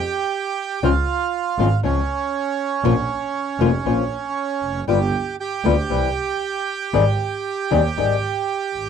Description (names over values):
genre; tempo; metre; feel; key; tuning
tango; 118 BPM; 4/4; rubato; unclear; A4 = 440 Hz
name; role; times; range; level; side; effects
bandoneon; melody; 0.0-8.9 s; Db4 to G5; -23 LUFS; right 8 dB; none
flamenco guitar; accompaniment; 0.8-8.1 s; C3 to C5; -19 LUFS; left 12 dB; none
clear double bass; bass; 0.8-8.9 s; F1 to Eb2; -22 LUFS; right 2 dB; none
room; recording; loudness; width
light reverb; dry, close 1970s-style studio recording; -19 LUFS; side -7 dB against mid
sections
0.0-8.9 A section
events
none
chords
0.0 N.C.; 0.8 Dbmaj7; 2.8 Bbmadd9; 4.9 G7; 5.9 C; 6.9 Abmaj7